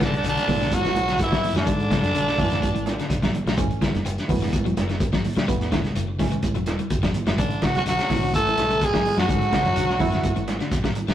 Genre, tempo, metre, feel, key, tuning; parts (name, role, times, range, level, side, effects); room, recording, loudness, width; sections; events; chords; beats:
afrobeat; 126 BPM; 4/4; straight; B dorian; A4 = 437 Hz
breathy tenor saxophone; melody; 0.0-3.3, 7.4-10.9 s; D4 to A4; -24 LUFS; equal
bright trombone; second line; 0.0-3.3, 7.4-10.9 s; D4 to A4; -30 LUFS; right 3 dB
warm trombone section; second line; 0.0-3.3, 7.4-10.9 s; D3 to A3; -34 LUFS; left 2 dB
reed electric piano; accompaniment; 0.0-11.1 s; E3 to A4; -32 LUFS; right 2 dB; fast tremolo
electric guitar at the edge of break-up; arpeggios; 0.0-11.1 s; C#3 to F#3; -30 LUFS; left 4 dB; spring reverb, tape echo
fingered electric bass; bass; 0.0-11.1 s; E1 to G#2; -29 LUFS; equal
vintage drum kit; drums; 0.0-11.1 s; hi-hat, kick drum, snare drum; -24 LUFS; equal
congas; percussion; 0.0-11.1 s; -31 LUFS; right 3 dB
shekere; percussion; 0.2-11.1 s; -38 LUFS; right 1 dB
moderate stone room reverb, RT60 1.3 s; rough rehearsal-room recording, tube saturation; -20 LUFS; side -11 dB against mid
0.0-11.1 A section
0.0 Bm7; 3.6 F#m7; 7.4 Bm7
0.24 0.72 1.19 | 1.67 2.15 2.62 3.10 | 3.57 4.05 4.53 5.00 | 5.48 5.95 6.43 6.91 | 7.38 7.86 8.33 8.81 | 9.29 9.76 10.24 10.71